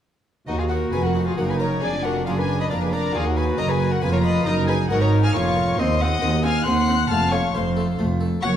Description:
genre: classical, baroque-style concerto movement with solo episodes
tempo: 136 BPM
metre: 3/4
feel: straight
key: Eb minor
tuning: A4 = 440 Hz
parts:
  - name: warm chamber violin section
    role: melody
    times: 0.5-8.6 s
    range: Eb5 to Gb6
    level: -29 LUFS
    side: left 5 dB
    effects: none
  - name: warm violin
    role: melody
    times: 0.5-8.5 s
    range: Gb4 to C6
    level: -26 LUFS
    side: left 3 dB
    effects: none
  - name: warm chamber violin section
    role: second line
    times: 0.5-8.6 s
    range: Eb4 to Gb5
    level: -30 LUFS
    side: left 3 dB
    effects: none
  - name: harpsichord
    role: accompaniment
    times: 0.5-8.6 s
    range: Eb2 to C5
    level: -30 LUFS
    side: right 1 dB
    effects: none
  - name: warm chamber viola section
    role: accompaniment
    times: 0.5-8.5 s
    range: A3 to Gb4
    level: -28 LUFS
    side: equal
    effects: none
  - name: dark studio cello section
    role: bass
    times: 0.5-8.6 s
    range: Eb2 to Ab2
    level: -24 LUFS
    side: right 2 dB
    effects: none
  - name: warm chamber double bass section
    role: bass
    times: 0.5-8.6 s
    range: F1 to Eb2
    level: -25 LUFS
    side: right 2 dB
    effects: none
room: wet recital hall reverb, RT60 1.5 s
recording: dark, warm production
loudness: -19 LUFS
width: side -10 dB against mid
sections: 0.5-8.6 A section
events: none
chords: 0.5 Ebm; 1.8 Bb/F; 3.1 Ebm; 4.5 Ebm/Gb; 5.8 Cdim/Eb; 7.1 F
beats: | 0.48 0.93 1.37 | 1.82 2.26 2.70 | 3.14 3.58 4.03 | 4.47 4.91 5.35 | 5.79 6.23 6.67 | 7.11 7.55 7.99 | 8.43

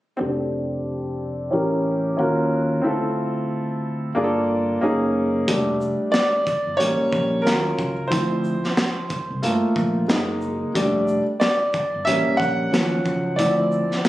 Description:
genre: hip hop, jazz-hop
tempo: 91 BPM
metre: 4/4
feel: swing 61% on 16ths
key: unclear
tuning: A4 = 438 Hz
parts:
  - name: warm upright piano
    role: accompaniment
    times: 0.2-14.1 s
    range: F3 to F#5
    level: -20 LUFS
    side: equal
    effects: low-pass filter
  - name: fretless electric bass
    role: bass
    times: 0.2-13.8 s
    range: F1 to Eb2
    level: -28 LUFS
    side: equal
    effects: none
  - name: crunchy breakbeat drum kit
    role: drums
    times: 5.5-14.1 s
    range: hi-hat, kick drum, shaker, snare drum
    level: -24 LUFS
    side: equal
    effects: none
room: moderate plate reverb, RT60 1.4 s, studio ambience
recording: recorded on a phone in the room, studio reverb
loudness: -19 LUFS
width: side -15 dB against mid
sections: 0.2-5.5 A section; 5.5-14.1 B section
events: filter sweep on upright piano 0.2-5.5; upright piano solo 5.5-14.1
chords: 0.2 F69; 1.5 A7b9; 2.2 Ebm7; 2.8 Dm7; 4.2 Gm9; 4.8 F#69; 5.5 F69; 6.8 A7b9; 7.5 Ebm7; 8.1 Dm7; 9.4 Gm9; 10.1 F#69; 10.7 F69; 12.1 A7b9; 12.7 Ebm7; 13.4 Dm7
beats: | 0.20 0.86 1.52 2.18 | 2.84 3.50 4.16 4.82 | 5.47 6.13 6.79 7.45 | 8.11 8.77 9.43 10.09 | 10.75 11.41 12.07 12.73 | 13.39 14.05

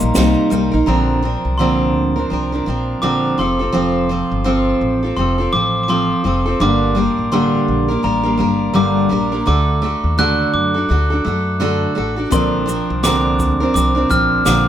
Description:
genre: acoustic pop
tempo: 84 BPM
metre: 4/4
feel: swing 60% on 16ths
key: unclear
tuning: A4 = 441 Hz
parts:
  - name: glockenspiel with soft plastic mallets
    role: second line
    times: 0.0-14.6 s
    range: Bb5 to F#6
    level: -20 LUFS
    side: left 1 dB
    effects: none
  - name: picked steel-string acoustic guitar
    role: accompaniment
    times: 0.0-14.7 s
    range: G2 to Bb4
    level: -17 LUFS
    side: right 1 dB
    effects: none
  - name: warm upright piano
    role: accompaniment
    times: 0.0-0.9, 12.3-14.7 s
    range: C4 to Eb5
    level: -28 LUFS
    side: left 5 dB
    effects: none
  - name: upright bass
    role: bass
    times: 0.0-14.7 s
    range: F1 to F#2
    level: -21 LUFS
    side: equal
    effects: none
  - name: jazz brush drum kit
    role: drums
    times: 0.0-0.7, 12.3-14.7 s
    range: kick drum, shaker, snare drum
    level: -22 LUFS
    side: equal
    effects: none
room: light reverb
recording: none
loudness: -14 LUFS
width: side -10 dB against mid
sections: 0.9-14.7 A section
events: none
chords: 0.0 Cm7; 0.9 Bbadd9; 3.4 F; 6.6 Gm; 9.5 D; 12.3 Bbadd9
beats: 0.15 | 0.87 1.59 2.30 3.02 | 3.73 4.45 5.17 5.88 | 6.60 7.32 8.03 8.75 | 9.46 10.18 10.89 11.61 | 12.32 13.04 13.75 14.47

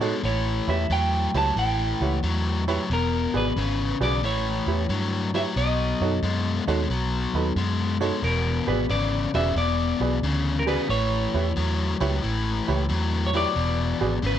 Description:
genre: blues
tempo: 90 BPM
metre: 4/4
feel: swing 67% on 8ths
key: E mixolydian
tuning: A4 = 441 Hz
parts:
  - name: bright upright piano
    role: accompaniment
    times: 0.0-14.1 s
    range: D#4 to D5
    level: -30 LUFS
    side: right 6 dB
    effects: plate reverb
  - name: biting overdriven guitar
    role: riff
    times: 0.0-14.4 s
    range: E2 to G#3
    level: -27 LUFS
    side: left 5 dB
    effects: none
  - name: vintage muted fingered electric bass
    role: bass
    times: 0.0-14.4 s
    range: E1 to A2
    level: -26 LUFS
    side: right 1 dB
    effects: none
  - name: clean electric guitar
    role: melody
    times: 0.3-14.4 s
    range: A#4 to A5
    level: -28 LUFS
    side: right 1 dB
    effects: warbly pitch drift, plate reverb
room: light reverb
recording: none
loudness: -22 LUFS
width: side -10 dB against mid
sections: 0.0-8.2 A section; 8.2-14.4 A section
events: none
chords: 0.2 A7; 2.9 E7; 4.2 A7; 5.6 B7; 8.2 E7; 10.9 A7; 13.6 E7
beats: | 0.23 0.90 1.56 2.23 | 2.90 3.56 4.23 4.90 | 5.57 6.23 6.90 7.57 | 8.23 8.90 9.57 10.23 | 10.90 11.57 12.23 12.90 | 13.56 14.23

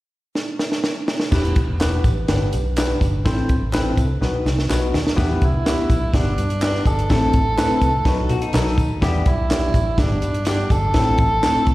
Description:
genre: uptempo 1960s-style soul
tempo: 124 BPM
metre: 4/4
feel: straight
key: E minor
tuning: A4 = 441 Hz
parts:
  - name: compact cocktail drum kit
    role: drums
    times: 0.4-11.7 s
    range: crash cymbal, hi-hat, kick drum, snare drum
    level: -20 LUFS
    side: equal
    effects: none
  - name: barky tine electric piano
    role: accompaniment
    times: 1.3-11.7 s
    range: F#3 to B5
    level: -24 LUFS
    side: left 2 dB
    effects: overdrive, lush chorus, slapback echo
  - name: vintage muted fingered electric bass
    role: bass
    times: 1.3-11.7 s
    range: E1 to B2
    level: -22 LUFS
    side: equal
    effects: none
  - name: tambourine and handclaps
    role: percussion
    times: 1.3-11.7 s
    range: none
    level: -35 LUFS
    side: right 1 dB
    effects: none
  - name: breathy tenor saxophone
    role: melody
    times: 5.4-11.7 s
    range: D4 to A4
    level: -22 LUFS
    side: right 1 dB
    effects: slapback echo
  - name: electric guitar through a small old amp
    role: riff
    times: 8.1-9.0 s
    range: D#4 to B4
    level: -28 LUFS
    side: left 5 dB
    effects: slapback echo
room: light reverb, small room reverb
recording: live gig heard through the venue's PA, recital hall reverb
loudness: -17 LUFS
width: side -17 dB against mid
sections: 0.0-1.3 A section; 1.3-5.2 B section; 5.2-11.7 C section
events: drum fill 0.3-1.3, 4.2-5.2; tine electric piano fill 8.3-9.0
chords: 0.0 N.C.; 1.3 Em; 2.3 G; 3.2 Am; 4.2 B; 5.2 Em; 6.1 G; 7.1 Am; 8.1 B; 9.0 Em; 10.0 G; 10.9 Am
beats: 0.35 0.83 | 1.32 1.80 2.28 2.77 | 3.25 3.73 4.21 4.69 | 5.17 5.66 6.14 6.62 | 7.10 7.58 8.06 8.54 | 9.02 9.50 9.98 10.47 | 10.95 11.43

